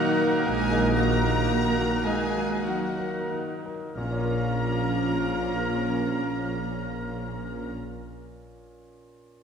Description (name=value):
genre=classical, romantic movement for piano and orchestra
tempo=28-41 BPM (dotted quarters)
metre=12/8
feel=rubato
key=Bb minor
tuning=A4 = 445 Hz
part: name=clear baby grand piano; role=melody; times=0.0-9.4 s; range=Bb2 to F5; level=-33 LUFS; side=left 2 dB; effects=none
part: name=rich symphonic violin section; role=melody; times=0.0-7.7 s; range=Gb5 to Bb5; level=-37 LUFS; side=left 3 dB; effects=none
part: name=clear clarinet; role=second line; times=0.0-7.7 s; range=Db4 to Eb4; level=-36 LUFS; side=left 2 dB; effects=none
part: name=clear oboe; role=second line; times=0.0-7.7 s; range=Bb4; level=-39 LUFS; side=right 1 dB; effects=none
part: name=hollow concert flute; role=second line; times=0.0-7.7 s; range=F6 to Gb6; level=-37 LUFS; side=left 2 dB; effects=none
part: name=warm symphonic violin section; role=second line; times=0.0-7.7 s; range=Gb4 to Bb5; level=-39 LUFS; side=left 2 dB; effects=none
part: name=warm bassoon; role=accompaniment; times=0.0-7.7 s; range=Bb3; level=-38 LUFS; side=right 4 dB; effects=none
part: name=warm symphonic viola section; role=accompaniment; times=0.0-7.7 s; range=Eb3 to F4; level=-36 LUFS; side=right 3 dB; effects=none
part: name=bright trombone section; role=sustained chords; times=0.0-7.7 s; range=Eb3 to Bb3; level=-34 LUFS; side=right 1 dB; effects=none
part: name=mellow French horn section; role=sustained chords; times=0.0-7.7 s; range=Bb3 to Gb4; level=-36 LUFS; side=equal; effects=none
part: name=clear trumpet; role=stabs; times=0.0-7.7 s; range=Bb4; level=-36 LUFS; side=equal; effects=none
part: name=dark symphonic cello section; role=bass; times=0.0-7.7 s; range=Gb3 to Bb3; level=-33 LUFS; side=right 2 dB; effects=none
part: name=mellow tuba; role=bass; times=0.4-7.7 s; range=Bb1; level=-32 LUFS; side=right 1 dB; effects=none
part: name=warm studio double bass section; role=bass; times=0.5-7.7 s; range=Bb1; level=-33 LUFS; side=right 1 dB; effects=none
room=wet scoring stage reverb, RT60 1.9 s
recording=heard from further back in the room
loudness=-24 LUFS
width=side -7 dB against mid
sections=0.0-4.0 A section; 4.0-9.4 B section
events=slowing down 0.0-4.0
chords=0.0 Ebm/Bb; 4.0 Bbm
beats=0.45 2.06 | 3.97 5.74 7.49 9.28